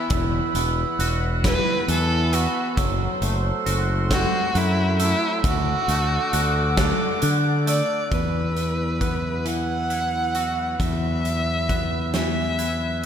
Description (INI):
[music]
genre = post-rock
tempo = 45 BPM (dotted quarters)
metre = 6/8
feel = straight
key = unclear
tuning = A4 = 440 Hz
[part]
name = rich violin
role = melody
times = 0.0-13.0 s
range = E4 to F#5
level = -26 LUFS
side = equal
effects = tape echo
[part]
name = rich chamber string section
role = sustained chords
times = 0.0-13.1 s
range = F#3 to D6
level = -33 LUFS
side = left 1 dB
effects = none
[part]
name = glockenspiel with rubber mallets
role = arpeggios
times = 0.0-13.0 s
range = E6 to F#6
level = -30 LUFS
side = right 5 dB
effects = tape echo
[part]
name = twangy electric guitar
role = arpeggios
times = 0.0-13.1 s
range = E2 to F#4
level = -30 LUFS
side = left 2 dB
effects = analog chorus, tape echo
[part]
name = growling fingered electric bass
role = bass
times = 0.1-13.1 s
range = E1 to D3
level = -24 LUFS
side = equal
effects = overdrive
[part]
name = big rock drum kit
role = drums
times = 0.1-12.8 s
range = hi-hat, kick drum, snare drum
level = -26 LUFS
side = equal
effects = none
[sound]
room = moderate lush hall reverb, RT60 3.2 s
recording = dreamy mix soaked in reverb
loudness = -20 LUFS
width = side -8 dB against mid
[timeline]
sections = 0.0-8.1 A section; 8.1-13.1 B section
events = none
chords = 0.0 Esus2; 2.8 F#dim; 5.4 D; 8.1 Esus2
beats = | 0.11 1.44 | 2.77 4.11 | 5.44 6.78 | 8.12 9.46 | 10.80 12.14